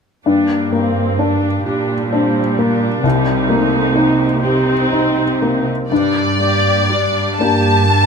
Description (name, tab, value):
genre	cinematic, emotional film score for orchestra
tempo	40-44 BPM (dotted quarters)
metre	6/8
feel	rubato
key	unclear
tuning	A4 = 440 Hz
part	felt-muted upright piano	accompaniment	0.3-8.1 s	C2 to G4	-17 LUFS	left 2 dB	none
part	rich studio viola section	accompaniment	0.3-8.1 s	G3 to G4	-19 LUFS	right 1 dB	none
part	rich studio cello section	bass	0.3-8.1 s	G2 to C3	-19 LUFS	right 3 dB	none
part	clear studio violin section	melody	5.9-8.1 s	D5 to A5	-16 LUFS	left 3 dB	none
room	moderate recital hall reverb, RT60 1.5 s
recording	close, detailed microphones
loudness	-13 LUFS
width	side -6 dB against mid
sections	0.3-5.9 A section; 5.9-8.1 B section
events	none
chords	0.3 Gm; 3.0 Cm7; 5.9 Gm